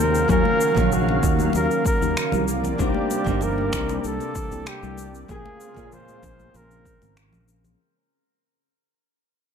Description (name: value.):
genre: sunset chillout.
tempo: 96 BPM.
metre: 4/4.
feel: straight.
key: unclear.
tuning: A4 = 439 Hz.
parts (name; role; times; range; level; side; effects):
mellow flugelhorn; melody; 0.0-7.2 s; Gb4 to C5; -26 LUFS; right 2 dB; tape echo.
lush unison pad; sustained chords; 0.0-7.8 s; C3 to F5; -29 LUFS; right 1 dB; chorus.
sustaining fretless electric bass; bass; 0.0-7.7 s; G1 to Bb2; -25 LUFS; equal; ensemble chorus.
electronic shaker and finger snaps; drums; 0.1-7.8 s; none; -33 LUFS; left 2 dB; overdrive.
nylon-string guitar; accompaniment; 0.3-7.8 s; Db3 to F5; -27 LUFS; moving between left 9 dB and right 3 dB; auto-pan, tape echo.
electronic kick drum; drums; 0.3-7.0 s; none; -26 LUFS; equal; overdrive.
congas; percussion; 0.3-7.8 s; none; -32 LUFS; left 6 dB; none.
room: moderate spring reverb, RT60 2.3 s.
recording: echo-heavy mix.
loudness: -19 LUFS.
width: side -7 dB against mid.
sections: 0.0-7.8 A section.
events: fade-out 0.0-7.8.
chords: 0.0 Ebm9; 2.5 Cm9; 5.3 Bbm9.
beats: | 0.29 0.92 1.54 2.17 | 2.79 3.42 4.04 4.67 | 5.29 5.92 6.54 7.17.